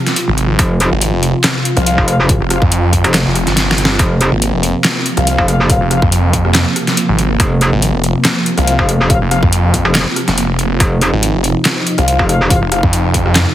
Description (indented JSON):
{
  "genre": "heavy wobble dubstep",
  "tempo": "141 BPM",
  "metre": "4/4",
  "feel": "swing 54% on 16ths, half-time",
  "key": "F minor",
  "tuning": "A4 = 441 Hz",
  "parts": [
    { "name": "supersaw pad", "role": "sustained chords", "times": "0.0-13.5 s", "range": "C3 to F4", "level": "-18 LUFS", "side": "right 1 dB", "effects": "phaser, sidechain pumping, low-pass filter" },
    { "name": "dubstep drum kit", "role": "drums", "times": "0.1-13.4 s", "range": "handclaps, hi-hat, rim click, snare drum", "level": "-15 LUFS", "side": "equal", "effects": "overdrive" },
    { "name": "snarling distorted saw bass", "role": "bass", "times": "0.3-13.5 s", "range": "F1 to F2", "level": "-14 LUFS", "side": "equal", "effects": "overdrive" },
    { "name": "metallic wobble bass", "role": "bass", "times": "0.6-12.6 s", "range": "F1", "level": "-13 LUFS", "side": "equal", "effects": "chorus, overdrive" },
    { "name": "electronic kick drum", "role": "drums", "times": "0.6-13.2 s", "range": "none", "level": "-16 LUFS", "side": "equal", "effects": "none" },
    { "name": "mellow brass ensemble", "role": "stabs", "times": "1.8-2.6, 5.2-6.0, 8.6-9.4, 12.0-12.8 s", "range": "F4 to F5", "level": "-19 LUFS", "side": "left 3 dB", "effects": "tape echo" }
  ],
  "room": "light reverb, digital ambience",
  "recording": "heavily compressed radio sound",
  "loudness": "-11 LUFS",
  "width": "side -12 dB against mid",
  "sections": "0.0-13.5 A section",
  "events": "drum fill 3.6-4.0",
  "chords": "0.0 F5"
}